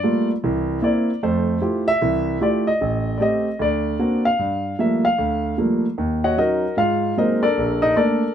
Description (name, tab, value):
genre	solo jazz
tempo	152 BPM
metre	4/4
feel	swing 64% on 8ths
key	unclear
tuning	A4 = 440 Hz
part	warm concert grand piano	solo	0.0-8.3 s	A1 to Gb5	-18 LUFS	equal	none
room	moderate studio ambience, RT60 0.5 s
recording	none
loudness	-18 LUFS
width	side -9 dB against mid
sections	0.0-4.4 A section; 4.4-8.3 A section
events	grand piano solo 0.0-8.3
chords	0.4 C7; 1.2 Fmaj9; 2.8 Am7b5; 3.6 D7b13; 4.4 Gm9; 6.0 Ebm7; 6.8 Ab9; 7.6 Bbmaj7